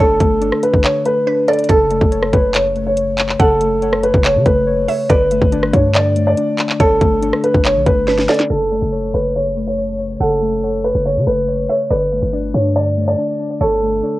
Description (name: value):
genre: hip hop, trap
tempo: 141 BPM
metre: 4/4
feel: half-time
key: F# phrygian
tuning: A4 = 439 Hz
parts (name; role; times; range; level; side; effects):
- dark concert grand piano; melody; 0.0-14.2 s; A4 to D5; -16 LUFS; right 1 dB; cassette tape, analog delay
- mallet-like synth pluck; second line; 0.0-14.2 s; A4 to F#5; -24 LUFS; right 5 dB; chorus, cassette tape, plate reverb, analog delay
- muted felt-like synth keys; accompaniment; 0.0-14.2 s; C#3 to C#5; -21 LUFS; left 4 dB; chorus, cassette tape, plate reverb
- warm 808-style bass; bass; 0.0-14.0 s; F#1 to C#3; -20 LUFS; equal; none
- trap drum kit; drums; 0.2-14.1 s; handclaps, hi-hat, kick drum, rim click, snare drum; -16 LUFS; equal; none
room: light reverb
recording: home recording on cassette, low-pass filter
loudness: -13 LUFS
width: side -17 dB against mid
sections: 0.0-8.5 A section; 8.5-14.2 B section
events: kick muted 0.8-1.7; drum fill 8.1-8.5; filter sweep 8.5-14.2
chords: 0.0 Gadd9; 1.7 F#m; 5.1 Gadd9; 8.5 F#m; 11.9 Gadd9